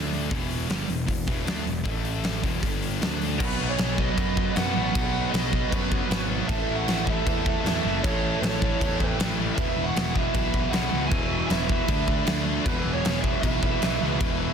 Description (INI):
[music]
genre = hard rock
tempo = 156 BPM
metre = 4/4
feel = straight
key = unclear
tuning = A4 = 441 Hz
[part]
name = high-gain distorted guitar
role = riff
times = 0.0-14.5 s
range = E2 to D4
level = -31 LUFS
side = left 12 dB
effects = distortion
[part]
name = overdriven semi-hollow guitar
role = riff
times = 0.0-14.5 s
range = E2 to D4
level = -33 LUFS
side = right 12 dB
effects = none
[part]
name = fuzz picked electric bass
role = bass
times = 0.0-14.5 s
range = E1 to F#2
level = -30 LUFS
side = left 1 dB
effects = overdrive
[part]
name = huge arena drum kit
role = drums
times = 0.1-14.3 s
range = crash cymbal, hi-hat, kick drum, snare drum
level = -27 LUFS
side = equal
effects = none
[part]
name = lead guitar through a small cranked amp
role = melody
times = 3.4-14.5 s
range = B4 to G#5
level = -30 LUFS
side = right 4 dB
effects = overdrive
[part]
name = octave-fuzz lead guitar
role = second line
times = 3.4-14.5 s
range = E4 to E5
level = -38 LUFS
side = right 4 dB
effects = distortion
[part]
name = overdriven electric guitar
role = riff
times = 3.4-14.5 s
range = E2 to D4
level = -34 LUFS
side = left 1 dB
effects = none
[sound]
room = light reverb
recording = dense, heavily limited modern master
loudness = -23 LUFS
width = side -7 dB against mid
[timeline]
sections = 0.0-3.4 A section; 3.4-14.5 B section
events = none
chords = 0.3 E5; 1.9 A5; 2.4 E5; 2.6 G5; 3.0 D5; 3.4 B; 6.5 A; 9.6 E5; 11.9 D5; 12.7 E5